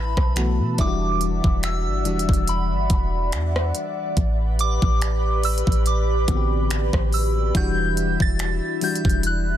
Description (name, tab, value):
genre	contemporary R&B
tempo	71 BPM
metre	4/4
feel	swing 54% on 16ths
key	E minor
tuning	A4 = 442 Hz
part	soft synth bell	melody	0.0-9.4 s	B5 to A6	-28 LUFS	right 1 dB	chorus, phaser, ping-pong delay
part	glassy FM pad	sustained chords	0.0-9.6 s	E4 to B5	-29 LUFS	right 1 dB	ensemble chorus, built-in reverb
part	soft 808-style bass	bass	0.0-9.6 s	E1 to B2	-23 LUFS	equal	none
part	trap drum kit	drums	0.2-9.4 s	finger snaps, hi-hat, kick drum, rim click	-22 LUFS	equal	overdrive, soft clipping on snare
part	FM electric piano with auto-pan	accompaniment	0.4-9.6 s	D3 to G4	-27 LUFS	left 4 dB	none
part	glassy synth bell	texture	0.8-1.8 s	E5	-39 LUFS	right 5 dB	chorus, ping-pong delay
room	little or no reverb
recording	dense, heavily limited modern master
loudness	-19 LUFS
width	side -11 dB against mid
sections	0.8-9.6 A section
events	none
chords	0.0 B7sus4; 0.8 Em9; 4.2 Am11; 7.5 Em9